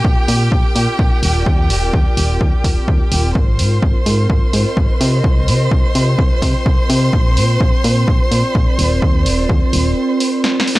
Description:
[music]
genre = piano house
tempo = 127 BPM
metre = 4/4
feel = swing 58% on 16ths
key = Eb major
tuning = A4 = 440 Hz
[part]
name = rich chamber violin section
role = sustained chords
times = 0.0-10.8 s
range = G4 to C6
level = -22 LUFS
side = right 1 dB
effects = sidechain pumping
[part]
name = solid FM bass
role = bass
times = 0.0-9.9 s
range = Eb1 to C3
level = -16 LUFS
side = equal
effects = sidechain pumping
[part]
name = electronic kick drum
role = drums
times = 0.0-9.6 s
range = none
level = -15 LUFS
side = equal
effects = none
[part]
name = warbly tape-like pad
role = texture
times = 0.0-10.8 s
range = C4 to Eb5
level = -22 LUFS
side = right 1 dB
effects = chorus, built-in reverb, sidechain pumping
[part]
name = punchy analog drum machine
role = drums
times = 0.3-10.8 s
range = hi-hat, snare drum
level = -21 LUFS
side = equal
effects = none
[sound]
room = little or no reverb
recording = dry, gritty hardware recording, cassette tape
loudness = -12 LUFS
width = side -18 dB against mid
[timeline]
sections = 0.0-10.8 A section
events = drum fill 10.4-10.8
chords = 0.0 Bb; 1.2 Ebmaj7; 3.4 Ab; 5.0 Cm; 7.1 Bb; 8.8 Eb5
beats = 0.05 0.52 0.99 | 1.46 1.94 2.41 2.88 | 3.35 3.83 4.30 4.77 | 5.24 5.71 6.19 6.66 | 7.13 7.61 8.08 8.55 | 9.02 9.49 9.97 10.44

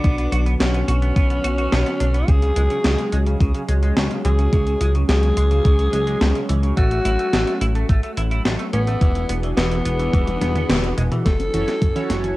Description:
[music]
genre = synthwave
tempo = 107 BPM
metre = 4/4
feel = straight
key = unclear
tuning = A4 = 440 Hz
[part]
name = growling alto saxophone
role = melody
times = 0.0-12.3 s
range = B3 to A4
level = -24 LUFS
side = left 1 dB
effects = tape echo
[part]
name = lush unison pad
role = sustained chords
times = 0.0-12.4 s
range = D3 to G#5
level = -28 LUFS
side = right 1 dB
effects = chorus, sidechain pumping, cassette tape
[part]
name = semi-hollow electric guitar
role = riff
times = 0.0-11.2 s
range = C#3 to F#4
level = -29 LUFS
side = right 2 dB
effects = analog chorus, cassette tape, analog delay
[part]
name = chorused synth bass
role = bass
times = 0.0-12.3 s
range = E1 to C#2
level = -20 LUFS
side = equal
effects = none
[part]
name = electronic kick drum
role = drums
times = 0.0-11.9 s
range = none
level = -17 LUFS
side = equal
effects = cassette tape
[part]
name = gated 80s digital drum machine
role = drums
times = 0.0-12.4 s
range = hi-hat, snare drum, toms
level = -24 LUFS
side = equal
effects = gated reverb, gated reverb snare, cassette tape
[part]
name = warbly dusty pluck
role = arpeggios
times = 11.3-12.3 s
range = E3 to C#4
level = -29 LUFS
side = right 1 dB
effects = chorus, cassette tape, analog delay
[part]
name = chorused polysynth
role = stabs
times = 11.5-12.4 s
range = C#4 to C#5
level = -25 LUFS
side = right 3 dB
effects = vintage 12-bit sampler grit, cassette tape
[sound]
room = moderate studio reverb, RT60 0.6 s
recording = home recording on cassette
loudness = -17 LUFS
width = side -18 dB against mid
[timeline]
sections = 0.0-11.3 A section; 11.3-12.4 B section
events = drum fill 10.1-11.3, 11.3-12.4; band accent 10.7; filter sweep on synth arpeggio sound 11.3-12.4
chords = 0.0 Bm; 2.3 C#sus4; 6.8 A6; 9.0 E7; 11.3 F#m7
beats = | 0.04 0.60 1.16 1.72 | 2.29 2.85 3.41 3.97 | 4.53 5.09 5.65 6.21 | 6.77 7.33 7.89 8.45 | 9.01 9.57 10.13 10.70 | 11.26 11.82

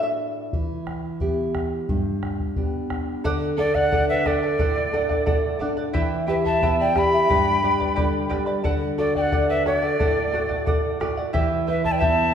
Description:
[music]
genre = andean folk, Andean ensemble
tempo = 89 BPM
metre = 2/4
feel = straight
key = unclear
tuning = A4 = 442 Hz
[part]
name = charango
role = accompaniment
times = 0.0-0.1, 3.2-12.3 s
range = E4 to B5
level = -26 LUFS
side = right 1 dB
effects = none
[part]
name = nylon-string guitar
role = accompaniment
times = 0.0-12.3 s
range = G2 to G4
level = -26 LUFS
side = equal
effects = none
[part]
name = bombo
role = percussion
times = 0.5-12.2 s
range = none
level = -27 LUFS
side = left 1 dB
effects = none
[part]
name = reedy quena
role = melody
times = 3.6-12.3 s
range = D5 to B5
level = -24 LUFS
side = equal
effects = none
[part]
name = breathy pan flute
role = second line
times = 3.6-12.3 s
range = A4 to G5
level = -26 LUFS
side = equal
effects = none
[sound]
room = wet recital hall reverb, RT60 1.7 s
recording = heard from further back in the room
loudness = -20 LUFS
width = side -8 dB against mid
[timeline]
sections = 0.0-3.2 A section; 3.2-12.3 B section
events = charango solo 0.0-3.2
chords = 0.0 D; 0.5 Em; 1.9 G; 3.2 D; 5.9 Em; 7.3 G; 8.6 D; 11.3 Em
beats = | 0.52 1.20 | 1.88 2.56 | 3.24 3.92 | 4.59 5.27 | 5.94 6.62 | 7.29 7.97 | 8.64 9.32 | 9.99 10.67 | 11.34 12.02

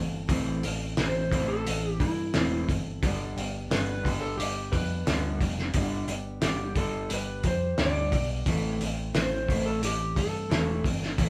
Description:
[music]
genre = folk rock and heartland rock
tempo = 88 BPM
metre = 4/4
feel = straight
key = A minor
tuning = A4 = 441 Hz
[part]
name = picked steel-string acoustic guitar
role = accompaniment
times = 0.0-11.3 s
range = G2 to A4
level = -37 LUFS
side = equal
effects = none
[part]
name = electric guitar through a small old amp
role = riff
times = 0.0-11.3 s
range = G2 to C4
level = -38 LUFS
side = equal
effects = none
[part]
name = hollow-body short-scale fingered electric bass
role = bass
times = 0.0-11.3 s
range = E1 to G2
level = -36 LUFS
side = equal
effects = none
[part]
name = cloth-damped thuddy drum kit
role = drums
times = 0.3-11.3 s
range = hi-hat, kick drum, snare drum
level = -32 LUFS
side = equal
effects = none
[part]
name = electric slide guitar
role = melody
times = 1.0-10.8 s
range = E4 to D5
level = -34 LUFS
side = equal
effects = none
[sound]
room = moderate large studio reverb, RT60 0.9 s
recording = band playing live in one room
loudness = -28 LUFS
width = mono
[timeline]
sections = 0.0-11.3 A section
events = none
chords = 0.0 Am; 3.0 G; 8.5 Am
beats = | 0.30 0.98 1.66 2.34 | 3.03 3.71 4.39 5.07 | 5.75 6.43 7.11 7.79 | 8.47 9.15 9.83 10.51 | 11.19

